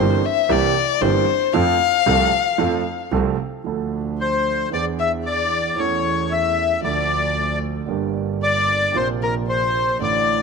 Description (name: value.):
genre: tango.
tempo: 114 BPM.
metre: 4/4.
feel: rubato.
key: F major, D minor from 3.7 s.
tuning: A4 = 442 Hz.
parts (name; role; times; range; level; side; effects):
warm violin; second line; 0.0-10.4 s; Bb4 to F5; -21 LUFS; left 13 dB; none.
warm concert grand piano; accompaniment; 0.0-10.4 s; G1 to A4; -23 LUFS; right 11 dB; none.
clear double bass; bass; 0.0-10.4 s; G1 to F2; -26 LUFS; right 1 dB; none.
bandoneon; melody; 4.2-10.4 s; Bb4 to E5; -21 LUFS; left 2 dB; none.
room: moderate plate reverb, RT60 2.6 s.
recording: 1960s-style stereo with parts hard left and right.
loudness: -18 LUFS.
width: side -4 dB against mid.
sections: 0.0-3.7 A section; 3.7-10.4 B section.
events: violin solo 0.0-3.7.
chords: 0.0 C7; 1.5 F; 3.7 Dm; 4.7 E7; 5.8 A/E; 6.8 Dm; 7.9 Gm; 8.9 Bbsus2.